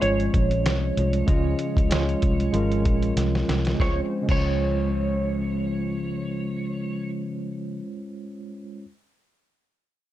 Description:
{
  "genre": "indie pop, bedroom pop",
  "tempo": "95 BPM",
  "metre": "4/4",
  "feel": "swing 55% on 16ths",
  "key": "Db major",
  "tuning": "A4 = 436 Hz",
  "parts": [
    { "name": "clean lap steel guitar", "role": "melody", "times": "0.0-7.1 s", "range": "Db5", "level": "-31 LUFS", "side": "right 2 dB", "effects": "analog chorus" },
    { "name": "mellow electric guitar", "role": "accompaniment", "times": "0.0-7.9 s", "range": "Db3 to C4", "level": "-29 LUFS", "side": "left 3 dB", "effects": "analog chorus, vibrato effect" },
    { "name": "tine electric piano", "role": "accompaniment", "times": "0.0-8.9 s", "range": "Ab3 to Eb5", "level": "-28 LUFS", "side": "right 2 dB", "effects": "medium stereo tremolo, cassette tape" },
    { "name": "vintage muted fingered electric bass", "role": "bass", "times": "0.0-7.8 s", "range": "Ab1 to Db2", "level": "-26 LUFS", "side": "equal", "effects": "none" },
    { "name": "lo-fi sampler-style drum kit", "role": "drums", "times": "0.0-4.5 s", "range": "crash cymbal, hi-hat, kick drum, snare drum", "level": "-24 LUFS", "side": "equal", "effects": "none" }
  ],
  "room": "moderate studio reverb, RT60 0.6 s",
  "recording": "dark, warm production",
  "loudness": "-22 LUFS",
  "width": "side -13 dB against mid",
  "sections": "0.0-3.8 A section; 3.8-6.3 B section",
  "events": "drum fill 3.2-3.8",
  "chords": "0.0 Dbmaj7",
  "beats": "0.01 0.65 | 1.28 1.91 2.54 3.17 | 3.80 4.44 5.07 5.70"
}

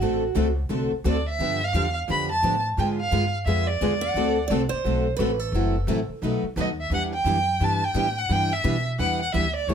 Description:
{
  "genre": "acoustic string swing (jazz manouche)",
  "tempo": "174 BPM",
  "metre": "4/4",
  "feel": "swing 62% on 8ths",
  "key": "unclear",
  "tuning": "A4 = 440 Hz",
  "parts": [
    { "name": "picked steel-string acoustic guitar", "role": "second line", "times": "0.0-0.5, 4.0-6.1 s", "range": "F#4 to F#5", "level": "-29 LUFS", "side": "right 5 dB", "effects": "none" },
    { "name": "picked plugged-in steel-string acoustic guitar", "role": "accompaniment", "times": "0.0-9.7 s", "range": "B2 to B4", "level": "-31 LUFS", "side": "right 6 dB", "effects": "none" },
    { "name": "picked steel-string acoustic guitar", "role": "accompaniment", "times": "0.0-9.7 s", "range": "B2 to A4", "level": "-28 LUFS", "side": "left 4 dB", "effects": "none" },
    { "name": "upright bass", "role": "bass", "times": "0.0-9.7 s", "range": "F#1 to B2", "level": "-27 LUFS", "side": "equal", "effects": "none" },
    { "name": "warm violin", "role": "melody", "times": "1.1-9.7 s", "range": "C#5 to B5", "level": "-25 LUFS", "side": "right 2 dB", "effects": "none" }
  ],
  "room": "light reverb",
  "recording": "none",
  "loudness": "-22 LUFS",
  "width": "side -8 dB against mid",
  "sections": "0.0-9.7 A section",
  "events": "none",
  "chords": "0.0 D7; 1.4 G7; 2.8 G#dim7; 4.1 D7; 5.5 F#m7b5; 6.2 B7; 6.9 Em7",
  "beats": "| 0.01 0.36 0.70 1.05 | 1.39 1.74 2.08 2.42 | 2.77 3.11 3.46 3.80 | 4.15 4.49 4.84 5.18 | 5.53 5.88 6.22 6.57 | 6.91 7.26 7.60 7.95 | 8.29 8.64 8.99 9.33 | 9.68"
}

